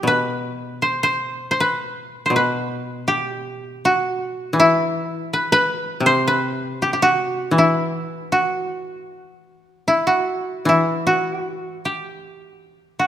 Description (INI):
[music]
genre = japanese traditional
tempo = 80 BPM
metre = 4/4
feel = rubato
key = E hirajoshi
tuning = A4 = 440 Hz
[part]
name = koto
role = melody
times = 0.0-13.1 s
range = E4 to C5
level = -19 LUFS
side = equal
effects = none
[part]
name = koto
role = accompaniment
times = 0.0-13.0 s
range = B2 to E3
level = -23 LUFS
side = left 1 dB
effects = none
[sound]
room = moderate concert hall reverb, RT60 2.0 s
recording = none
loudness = -18 LUFS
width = side -10 dB against mid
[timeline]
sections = 0.0-13.1 A section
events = none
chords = none